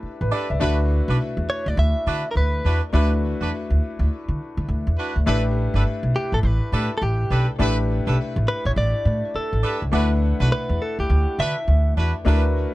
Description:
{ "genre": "R&B", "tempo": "103 BPM", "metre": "4/4", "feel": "swing 62% on 16ths", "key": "D major", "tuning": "A4 = 441 Hz", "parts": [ { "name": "warm concert grand piano", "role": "accompaniment", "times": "0.0-12.7 s", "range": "A3 to F#5", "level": "-28 LUFS", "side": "left 2 dB", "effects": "none" }, { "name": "upright bass", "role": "bass", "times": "0.0-12.6 s", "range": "G1 to D3", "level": "-20 LUFS", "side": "equal", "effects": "none" }, { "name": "clear horn section", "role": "stabs", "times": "0.3-12.4 s", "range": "D4 to B4", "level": "-28 LUFS", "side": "right 2 dB", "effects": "none" }, { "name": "direct-recorded clean electric guitar", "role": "melody", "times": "1.5-11.9 s", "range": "G4 to E5", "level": "-26 LUFS", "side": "equal", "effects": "none" } ], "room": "little or no reverb", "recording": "dark, warm production", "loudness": "-19 LUFS", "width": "side -18 dB against mid", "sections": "0.0-5.3 A section; 5.3-12.7 A section", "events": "none", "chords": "0.0 A9sus4; 0.6 D69; 5.3 A9sus4; 9.9 D69" }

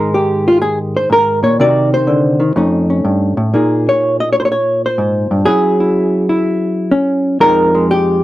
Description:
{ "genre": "solo jazz", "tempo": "124 BPM", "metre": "4/4", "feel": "swing 68% on 8ths", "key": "F minor", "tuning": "A4 = 440 Hz", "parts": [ { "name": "hollow-body jazz guitar", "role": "solo", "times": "0.0-8.2 s", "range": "F2 to Eb5", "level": "-11 LUFS", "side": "equal", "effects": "none" } ], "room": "light reverb", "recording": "dry, close 1970s-style studio recording", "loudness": "-11 LUFS", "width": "side -16 dB against mid", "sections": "0.0-8.2 A section", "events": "none", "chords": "0.0 Absus2; 1.6 Cdim; 2.6 F7b13; 3.5 Bb9sus4; 5.5 Gbsus2; 7.4 Fm7" }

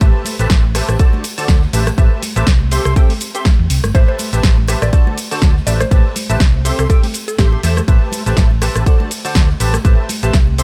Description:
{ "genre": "piano house", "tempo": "122 BPM", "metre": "4/4", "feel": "swing 56% on 16ths", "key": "A dorian", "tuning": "A4 = 441 Hz", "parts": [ { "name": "percussive organ stab", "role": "riff", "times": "0.0-10.6 s", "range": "D3 to C6", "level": "-24 LUFS", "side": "equal", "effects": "ensemble chorus, sidechain pumping, tape echo" }, { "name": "hollow-body short-scale fingered electric bass", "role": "bass", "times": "0.0-10.6 s", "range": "G1 to E2", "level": "-19 LUFS", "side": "equal", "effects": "sidechain pumping" }, { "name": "electronic kick drum", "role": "drums", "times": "0.0-10.4 s", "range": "none", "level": "-14 LUFS", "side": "equal", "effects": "none" }, { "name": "house drum kit", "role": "drums", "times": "0.0-10.6 s", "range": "cabasa, hi-hat, rim click, snare drum", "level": "-23 LUFS", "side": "equal", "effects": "none" }, { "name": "open jazz drum kit", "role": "drums", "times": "0.0-10.6 s", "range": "ride cymbal, snare drum", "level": "-37 LUFS", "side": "equal", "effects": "none" }, { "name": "tambourine and congas", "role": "percussion", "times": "0.0-10.6 s", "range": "none", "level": "-31 LUFS", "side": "equal", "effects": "none" }, { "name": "mallet-like synth pluck", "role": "melody", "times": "3.9-7.6 s", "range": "G4 to D5", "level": "-27 LUFS", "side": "equal", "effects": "chorus, tape echo" } ], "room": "studio ambience", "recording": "none", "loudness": "-14 LUFS", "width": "mono", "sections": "0.0-10.6 A section", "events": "none", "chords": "0.0 Am9; 1.0 D7; 1.7 Am9; 2.7 C6; 3.9 Am9; 4.9 D7; 5.7 Am9; 6.7 C6; 7.9 Am9; 8.9 D7; 9.6 Am9" }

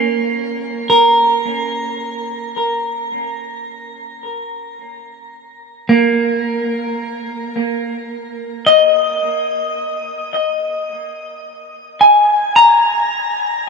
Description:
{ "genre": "ambient", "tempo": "free time", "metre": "none", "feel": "none", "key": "unclear", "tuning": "A4 = 440 Hz", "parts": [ { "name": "semi-hollow electric guitar", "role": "solo", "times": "0.0-13.7 s", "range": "A#3 to A#5", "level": "-14 LUFS", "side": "equal", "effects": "spring reverb, tape echo" } ], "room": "wet shimmer reverb, RT60 8.0 s", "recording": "none", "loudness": "-13 LUFS", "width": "side -4 dB against mid", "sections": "0.0-12.0 A section; 12.0-13.7 B section", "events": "none", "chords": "0.0 A#sus4; 12.0 N.C." }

